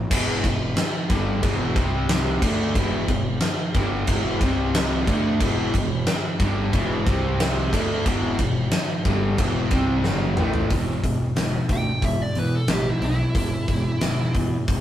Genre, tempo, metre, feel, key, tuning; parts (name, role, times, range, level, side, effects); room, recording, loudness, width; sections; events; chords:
hard rock; 91 BPM; 4/4; straight; E minor; A4 = 442 Hz
overdriven semi-hollow guitar; riff; 0.0-14.8 s; E2 to D4; -26 LUFS; equal
distorted electric guitar; riff; 0.1-10.7 s; E2 to D4; -28 LUFS; equal; distortion
fuzz fingered electric bass; bass; 0.1-14.8 s; E1 to E2; -28 LUFS; equal; overdrive
huge arena drum kit; drums; 0.1-14.8 s; crash cymbal, hi-hat, kick drum, snare drum, toms; -23 LUFS; equal
high-gain lead guitar; melody; 11.7-14.3 s; E4 to G5; -28 LUFS; right 1 dB; distortion
moderate small room reverb, RT60 0.5 s; rough rehearsal-room recording; -20 LUFS; side -11 dB against mid
0.1-10.7 A section; 10.7-14.8 B section
drum fill 10.0-10.7; lead electric guitar solo 10.7-14.8
0.1 Em; 1.8 C5; 2.4 Em; 4.4 C5; 5.1 Em; 7.1 C5; 7.7 Em; 10.7 E5